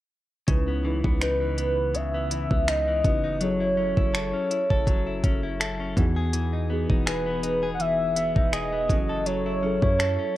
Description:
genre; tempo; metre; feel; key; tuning
contemporary R&B; 82 BPM; 4/4; swing 54% on 16ths; F# dorian; A4 = 440 Hz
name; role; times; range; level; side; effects
muted felt-like synth keys; accompaniment; 0.5-10.4 s; C#3 to F#5; -31 LUFS; right 1 dB; chorus, cassette tape
direct-recorded clean electric guitar; arpeggios; 0.5-10.4 s; C#3 to A4; -31 LUFS; left 3 dB; wide subtle chorus, cassette tape
warm 808-style bass; bass; 0.5-10.2 s; E1 to F#2; -30 LUFS; equal; none
smooth R&B drum kit; drums; 0.5-10.2 s; finger snaps, hi-hat, kick drum; -25 LUFS; equal; cassette tape
warm velvety synth lead; melody; 1.2-10.4 s; B4 to F#5; -26 LUFS; equal; chorus, cassette tape, analog delay
room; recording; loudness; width
digital ambience; home recording on cassette; -22 LUFS; side -15 dB against mid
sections
0.5-10.4 A section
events
synth keys fill 5.2-6.3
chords
0.5 C#m9; 3.4 F#m7; 6.0 Emaj7; 8.9 F#m7

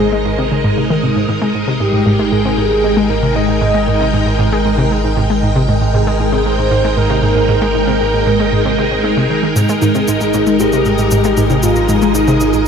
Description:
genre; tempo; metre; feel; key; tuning
ambient, sequencer-driven space music; 116 BPM; 4/4; straight; Ab major; A4 = 442 Hz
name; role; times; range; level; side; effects
breathy flute-like synth lead; melody; 0.0-12.7 s; Eb4 to Eb5; -18 LUFS; equal; analog chorus, cassette tape, tape echo
phased string machine; sustained chords; 0.0-12.7 s; Ab3 to G5; -16 LUFS; equal; ensemble chorus, phaser
analog pluck; riff; 0.0-12.6 s; Ab2 to C4; -16 LUFS; equal; chorus, tape echo
warm sub bass; bass; 0.0-12.7 s; Ab1; -21 LUFS; equal; none
cabasa and congas; percussion; 9.6-12.6 s; none; -25 LUFS; equal; tape echo
room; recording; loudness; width
wet huge ambient reverb, RT60 8.9 s; none; -11 LUFS; side -7 dB against mid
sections
0.0-12.7 A section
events
none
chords
0.0 Absus2

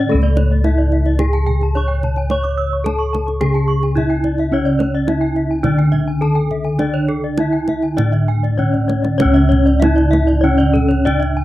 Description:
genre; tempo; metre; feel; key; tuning
Balinese gamelan; 97-109 BPM; 4/4; straight; C# pelog; A4 = 440 Hz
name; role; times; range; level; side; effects
gamelan-type bronze metallophone; melody; 0.0-11.4 s; A3-20c to C#5; -18 LUFS; equal; none
gamelan-type bronze metallophone; accompaniment; 0.0-0.1, 4.5-11.4 s; C#3 to D3+20c; -24 LUFS; right 2 dB; none
gamelan-type bronze metallophone; arpeggios; 0.0-11.4 s; A4-20c to C#6; -25 LUFS; left 6 dB; none
gamelan-type bossed gongs; bass; 0.0-11.4 s; C#2 to C#5; -17 LUFS; left 1 dB; none
gamelan-type bronze metallophone; arpeggios; 0.2-11.4 s; A4-20c to E6-30c; -26 LUFS; right 5 dB; none
kendang; percussion; 0.2-11.3 s; none; -24 LUFS; right 3 dB; none
room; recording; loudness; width
light reverb; dry, close 1970s-style studio recording; -14 LUFS; side -15 dB against mid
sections
0.1-9.2 A section; 9.2-11.4 B section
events
drum fill 8.6-9.2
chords
none

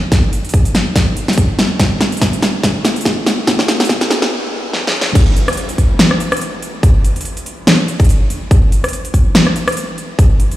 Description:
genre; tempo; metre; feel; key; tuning
future bass; 143 BPM; 4/4; swing 56% on 16ths, half-time; none; none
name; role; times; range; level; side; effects
big-room dance drum kit; drums; 0.1-10.6 s; crash cymbal, hi-hat, rim click, snare drum; -14 LUFS; equal; none
electronic kick drum; drums; 0.1-10.3 s; none; -12 LUFS; equal; none
room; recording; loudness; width
moderate shimmer reverb, RT60 6.2 s; played on a big sound system in a bare room, large studio reverb, high-pass filter, faint mains hum; -12 LUFS; side -15 dB against mid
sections
0.0-5.2 A section; 5.2-10.6 B section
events
build-up 0.0-5.2; drum fill 0.0-4.3, 4.7-5.2; filter sweep 0.0-5.2; stop 4.3-5.2; drop 5.2-10.6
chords
none

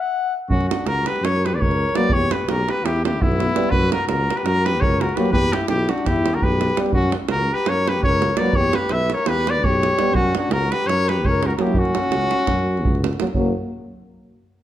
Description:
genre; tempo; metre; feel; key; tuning
balkan folk, Balkan brass band; 336 BPM (eighths); 9/8; straight; F# phrygian dominant; A4 = 440 Hz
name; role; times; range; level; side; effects
mellow flugelhorn; second line; 0.0-13.0 s; B3 to F#5; -26 LUFS; left 4 dB; none
clear trumpet; melody; 0.5-13.0 s; E4 to E5; -22 LUFS; equal; none
mellow tuba; bass; 0.5-13.5 s; F#1 to F#2; -23 LUFS; equal; none
davul; percussion; 0.5-13.5 s; none; -23 LUFS; right 2 dB; none
clear euphonium; accompaniment; 1.9-13.5 s; F#3 to G3; -28 LUFS; right 4 dB; none
mellow euphonium; accompaniment; 2.0-13.5 s; A#3 to B3; -28 LUFS; left 4 dB; none
room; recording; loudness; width
moderate recital hall reverb, RT60 1.6 s; none; -17 LUFS; side -12 dB against mid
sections
0.5-13.3 A section; 13.3-14.6 B section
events
stop 0.0-0.5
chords
0.0 N.C.; 0.5 F#; 2.1 Em; 3.7 F#; 5.3 Em; 6.9 F#; 8.5 Em; 10.1 F#

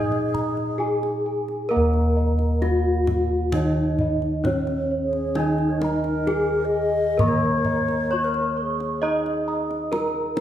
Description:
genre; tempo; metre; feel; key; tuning
Javanese gamelan; 66 BPM; 4/4; straight; Eb slendro; A4 = 440 Hz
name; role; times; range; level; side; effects
gamelan-type bronze metallophone; melody; 0.0-10.4 s; Db4-25c to Eb5; -25 LUFS; equal; none
wooden-headed alto flute; second line; 0.0-10.4 s; Ab4 to Eb5; -28 LUFS; left 4 dB; none
gamelan-type bronze metallophone; accompaniment; 0.0-10.4 s; Eb3 to Eb4; -28 LUFS; right 1 dB; none
gamelan-type bossed gongs; arpeggios; 0.0-10.4 s; Db5-25c to Db6-25c; -31 LUFS; left 2 dB; none
gamelan-type bronze metallophone; arpeggios; 0.0-10.4 s; Db5-25c to Eb6; -32 LUFS; right 4 dB; none
gamelan-type bossed gongs; bass; 0.0-10.4 s; Eb2 to Eb5; -27 LUFS; equal; none
kendang; percussion; 0.1-10.4 s; none; -30 LUFS; equal; none
room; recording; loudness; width
wet recital hall reverb, RT60 1.4 s; recorded in a church or concert hall; -20 LUFS; side -11 dB against mid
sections
0.0-10.4 A section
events
none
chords
none

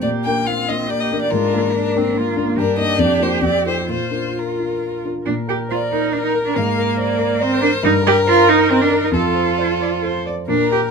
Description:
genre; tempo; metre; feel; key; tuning
quick classical-period movement for piano quartet; 127-144 BPM; 3/4; rubato; Bb major; A4 = 440 Hz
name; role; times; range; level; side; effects
warm violin; melody; 0.0-10.9 s; A4 to G5; -21 LUFS; left 4 dB; none
warm cello; second line; 0.0-10.8 s; Bb3 to G4; -19 LUFS; right 5 dB; none
dark concert grand piano; accompaniment; 0.0-10.9 s; F2 to D5; -21 LUFS; left 1 dB; none
rich viola; accompaniment; 0.0-10.9 s; Bb3 to D5; -26 LUFS; equal; none
room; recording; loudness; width
moderate small room reverb, RT60 0.6 s; minimal, uncompressed stereo recording; -15 LUFS; side -5 dB against mid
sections
0.0-5.3 A section; 5.3-10.9 B section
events
none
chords
0.0 Bb; 1.3 Bb7/Ab; 2.6 Eb/G; 3.0 Bb/F; 3.4 F7; 3.9 Bb; 6.6 Bb7/Ab; 7.8 Eb/G; 9.1 F

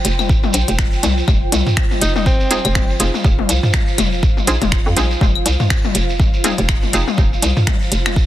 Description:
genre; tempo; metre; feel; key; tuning
minimal techno; 122 BPM; 4/4; swing 58% on 16ths; unclear; A4 = 440 Hz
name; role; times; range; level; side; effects
hollow knocking FM bass; bass; 0.0-8.3 s; F1 to F2; -19 LUFS; equal; sidechain pumping
minimal click drum kit; drums; 0.0-8.1 s; finger snaps, hi-hat; -22 LUFS; left 1 dB; soft clipping on snare
shekere; percussion; 0.0-8.3 s; none; -25 LUFS; right 3 dB; none
ethereal airy pad; texture; 0.0-8.3 s; F4 to G5; -26 LUFS; right 2 dB; ensemble chorus, built-in reverb, sidechain pumping
electronic toms and claves; percussion; 0.2-8.1 s; none; -22 LUFS; left 4 dB; none
electronic kick drum; drums; 0.3-8.3 s; none; -16 LUFS; equal; none
warm alto saxophone; melody; 2.0-3.0 s; C4 to Eb4; -22 LUFS; equal; tape echo
filtered dub chord stab; stabs; 2.5-7.1 s; C4 to Ab4; -24 LUFS; right 2 dB; chorus, tape echo
room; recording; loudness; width
digital ambience; dense, heavily limited modern master; -13 LUFS; side -13 dB against mid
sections
0.0-8.3 A section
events
none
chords
0.0 F5

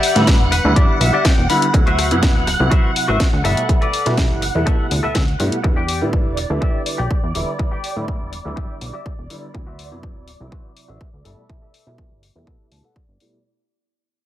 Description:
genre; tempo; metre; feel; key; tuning
filtered disco house; 123 BPM; 4/4; straight; E minor; A4 = 436 Hz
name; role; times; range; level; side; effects
phased string machine; sustained chords; 0.0-13.5 s; D5 to F#5; -26 LUFS; equal; ensemble chorus, phaser, sidechain pumping, low-pass filter
clean electric guitar; riff; 0.0-13.4 s; F#4 to B5; -23 LUFS; left 3 dB; lush chorus, sidechain pumping, low-pass filter
house drum kit; drums; 0.0-13.3 s; hi-hat, rim click, snare drum; -24 LUFS; left 1 dB; sidechain pumping on hats, sidechain pumping on perc
clear baby grand piano; accompaniment; 0.2-13.4 s; B2 to E4; -23 LUFS; right 1 dB; phaser, sidechain pumping, low-pass filter
plucky analog bass; bass; 0.2-13.2 s; D1 to B2; -21 LUFS; equal; sidechain pumping, low-pass filter
electronic kick drum; drums; 0.3-13.1 s; none; -18 LUFS; equal; none
room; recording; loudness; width
light reverb; none; -15 LUFS; side -13 dB against mid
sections
0.0-13.4 A section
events
fade-out 0.0-13.4; filter sweep on analog synth bass 0.0-13.4; filter sweep 0.0-13.4; clean electric guitar fill 0.3-1.7, 12.5-13.4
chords
0.0 Em7; 1.7 D13; 3.4 G69; 5.6 Em7; 9.5 D13; 11.2 G69

